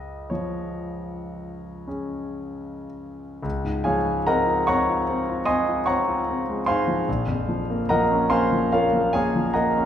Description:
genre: classical, impressionist solo piano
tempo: 35-51 BPM (dotted quarters)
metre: 9/8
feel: rubato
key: Db major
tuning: A4 = 439 Hz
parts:
  - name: clear concert grand piano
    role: solo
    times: 0.0-9.9 s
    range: Bb1 to Eb6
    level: -22 LUFS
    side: equal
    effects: none
room: wet recital hall reverb, RT60 1.4 s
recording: heard from further back in the room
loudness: -21 LUFS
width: side -9 dB against mid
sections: 0.0-3.4 A section; 3.4-9.9 B section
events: none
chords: 0.0 Db; 3.4 Dbmaj7; 7.1 Bbmadd9

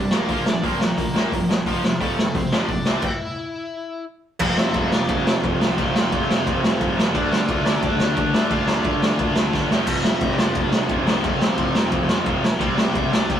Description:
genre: punk rock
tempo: 176 BPM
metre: 4/4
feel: straight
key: unclear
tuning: A4 = 441 Hz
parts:
  - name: crunchy overdriven guitar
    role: melody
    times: 0.0-13.4 s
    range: F3 to F5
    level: -30 LUFS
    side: left 1 dB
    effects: none
  - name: tight distorted guitar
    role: riff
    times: 0.0-13.4 s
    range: F2 to D4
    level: -28 LUFS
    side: left 6 dB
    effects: distortion
  - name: tight distorted guitar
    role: riff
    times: 0.0-13.4 s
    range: F2 to D4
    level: -26 LUFS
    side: right 4 dB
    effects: distortion
  - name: fuzz picked electric bass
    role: bass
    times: 0.0-13.4 s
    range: F1 to D3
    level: -30 LUFS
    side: equal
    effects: none
  - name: raw garage drum kit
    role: drums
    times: 0.1-13.4 s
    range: crash cymbal, hi-hat, kick drum, ride cymbal, snare drum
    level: -20 LUFS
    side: equal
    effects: none
  - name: fuzz guitar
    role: riff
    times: 4.4-13.4 s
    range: F2 to D4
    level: -31 LUFS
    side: equal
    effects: none
room: moderate studio reverb, RT60 0.6 s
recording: rough rehearsal-room recording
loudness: -18 LUFS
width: side -9 dB against mid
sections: 0.0-4.4 A section; 4.4-13.4 B section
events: stop 3.0-4.4; drum fill 9.5-9.9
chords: 0.1 Bb; 1.7 F; 2.9 C; 4.4 F5; 7.1 Dm; 9.7 F5; 12.6 C

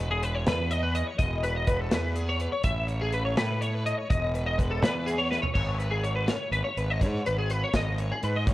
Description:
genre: math rock and midwest emo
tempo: 82 BPM (dotted quarters)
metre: 6/8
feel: straight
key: unclear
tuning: A4 = 443 Hz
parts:
  - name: twelve-string electric guitar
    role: arpeggios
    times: 0.0-8.5 s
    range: G#4 to E5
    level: -29 LUFS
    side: left 1 dB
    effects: ensemble chorus
  - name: fuzz fingered electric bass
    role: bass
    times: 0.0-8.5 s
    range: E1 to A2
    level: -29 LUFS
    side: equal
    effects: overdrive
  - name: modern studio drum kit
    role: drums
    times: 0.2-8.5 s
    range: crash cymbal, hi-hat, kick drum, snare drum, toms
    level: -30 LUFS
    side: equal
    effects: none
room: light reverb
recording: worn, warbling old tape, cassette tape, warbly pitch drift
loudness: -25 LUFS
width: side -16 dB against mid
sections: 0.0-5.6 A section; 5.6-8.5 B section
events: drum fill 5.3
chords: 0.0 Emaj7(no3); 2.6 A; 4.1 Emaj7(no3); 5.6 G#m

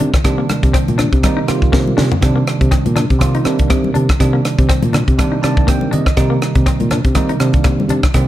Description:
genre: electric jazz fusion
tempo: 122 BPM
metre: 4/4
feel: swing 56% on 16ths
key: C minor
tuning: A4 = 441 Hz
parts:
  - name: bell-like tine electric piano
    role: accompaniment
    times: 0.0-8.3 s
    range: C3 to A5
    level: -18 LUFS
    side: right 4 dB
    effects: phaser
  - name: semi-hollow electric guitar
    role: stabs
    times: 0.0-8.1 s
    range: Bb3 to Eb4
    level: -24 LUFS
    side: left 6 dB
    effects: lush chorus
  - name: fingered electric bass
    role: bass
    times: 0.0-8.3 s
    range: Bb2 to C3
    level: -17 LUFS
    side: equal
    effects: none
  - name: tight funk drum kit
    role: drums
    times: 0.0-8.3 s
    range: hi-hat, kick drum, rim click, snare drum, toms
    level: -15 LUFS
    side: equal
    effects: none
  - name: congas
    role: percussion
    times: 0.0-8.0 s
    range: none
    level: -23 LUFS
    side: left 2 dB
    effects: none
room: light reverb, small room ambience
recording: none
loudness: -12 LUFS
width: side -14 dB against mid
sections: 0.0-8.3 A section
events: drum fill 1.7-2.2; tine electric piano fill 5.2-6.2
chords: 0.0 Cm9

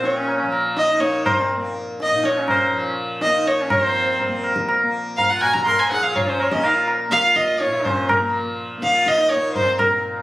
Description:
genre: indian classical, Hindustani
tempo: 123 BPM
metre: 4/4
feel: straight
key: Bb raga darbari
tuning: A4 = 442 Hz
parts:
  - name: rich violin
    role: melody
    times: 0.0-10.0 s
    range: Bb4 to C6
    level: -19 LUFS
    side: equal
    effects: none
  - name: bright sarangi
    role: second line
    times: 0.0-10.1 s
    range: Bb3 to C5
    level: -27 LUFS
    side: right 1 dB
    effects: none
  - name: tanpura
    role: drone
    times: 0.0-10.2 s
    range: Bb2 to Bb3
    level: -28 LUFS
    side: left 1 dB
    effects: none
  - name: tabla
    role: percussion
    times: 0.0-10.0 s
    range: none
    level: -22 LUFS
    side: equal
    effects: none
room: light reverb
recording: recorded on a phone in the room, studio ambience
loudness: -17 LUFS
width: side -16 dB against mid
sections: 0.0-3.7 A section; 3.7-10.2 B section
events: none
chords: none

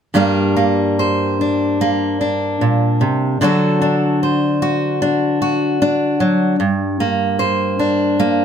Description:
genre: folk, solo fingerstyle acoustic guitar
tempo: 75 BPM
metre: 4/4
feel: rubato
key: G harmonic minor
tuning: A4 = 439 Hz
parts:
  - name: fingerpicked steel-string acoustic guitar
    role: solo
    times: 0.1-8.4 s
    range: G2 to C5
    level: -14 LUFS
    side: equal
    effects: none
room: moderate studio reverb, RT60 0.7 s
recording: none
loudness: -14 LUFS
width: side -8 dB against mid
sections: 0.1-8.4 A section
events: none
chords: 0.1 Gm; 3.4 D; 6.6 Gm

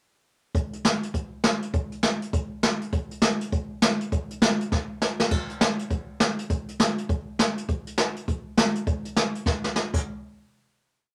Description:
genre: rock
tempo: 202 BPM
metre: 4/4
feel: swing 62% on 8ths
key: none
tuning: none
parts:
  - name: jazz brush drum kit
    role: drums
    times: 0.5-10.0 s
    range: crash cymbal, hi-hat, kick drum, snare drum, splash cymbal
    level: -26 LUFS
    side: equal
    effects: none
room: moderate club reverb, RT60 0.6 s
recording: none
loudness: -26 LUFS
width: mono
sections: 0.5-10.0 A section; 10.0-11.1 final hit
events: drum fill 4.7-5.3, 9.5-10.0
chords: none

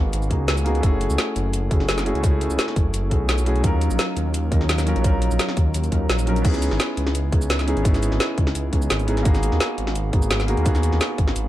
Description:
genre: liquid drum and bass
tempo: 171 BPM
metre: 4/4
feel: straight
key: C# minor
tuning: A4 = 441 Hz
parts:
  - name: dark grand piano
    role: accompaniment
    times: 0.0-11.5 s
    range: F#3 to A#4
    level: -25 LUFS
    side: equal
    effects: digital delay
  - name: dark detuned saw bass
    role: bass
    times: 0.0-11.5 s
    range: F#1 to D#2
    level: -22 LUFS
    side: equal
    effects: none
  - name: drum and bass drum kit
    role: drums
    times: 0.1-11.4 s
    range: crash cymbal, hi-hat, shaker, snare drum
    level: -25 LUFS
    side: equal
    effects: none
  - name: electronic kick drum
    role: drums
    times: 0.3-11.3 s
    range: none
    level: -20 LUFS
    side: equal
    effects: none
room: light reverb, digital ambience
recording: dark, warm production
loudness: -18 LUFS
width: side -14 dB against mid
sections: 0.0-6.4 A section; 6.4-11.5 A section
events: drop 0.0-6.4, 6.4-11.5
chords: 0.0 G#m9; 0.8 F#m9; 3.6 D#m9; 6.4 C#m9; 9.3 G#m9

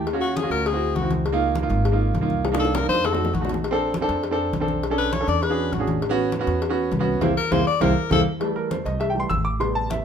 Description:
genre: Afro-Cuban jazz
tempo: 201 BPM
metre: 4/4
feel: straight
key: unclear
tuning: A4 = 438 Hz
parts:
  - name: clear concert grand piano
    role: accompaniment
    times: 0.0-10.0 s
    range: C3 to E6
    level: -24 LUFS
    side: right 3 dB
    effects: none
  - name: upright bass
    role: bass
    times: 0.0-10.0 s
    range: Ab1 to F2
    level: -26 LUFS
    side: right 1 dB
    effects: none
  - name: congas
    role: percussion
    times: 0.1-10.0 s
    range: none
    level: -28 LUFS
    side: left 3 dB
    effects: none
  - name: cowbell and bongos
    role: percussion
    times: 0.1-10.0 s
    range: none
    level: -30 LUFS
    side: left 8 dB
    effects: none
  - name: clear tenor saxophone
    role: second line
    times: 0.2-8.2 s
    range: Gb4 to D5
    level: -24 LUFS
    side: left 6 dB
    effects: none
room: light reverb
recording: minimal, uncompressed stereo recording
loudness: -20 LUFS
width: side -8 dB against mid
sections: 0.0-8.4 A section; 8.4-10.0 A section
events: tenor saxophone solo 0.0-8.4; drum fill 2.4-3.6, 8.0-8.4; band accent 7.2-8.4; grand piano solo 8.4-10.0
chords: 0.1 Ebm9; 0.7 D9; 1.3 Db69; 2.4 Cm9; 3.0 F7b9; 3.6 Bbmaj9; 4.8 Bm9; 5.4 E13; 6.0 A6; 7.2 C7; 8.4 Am7

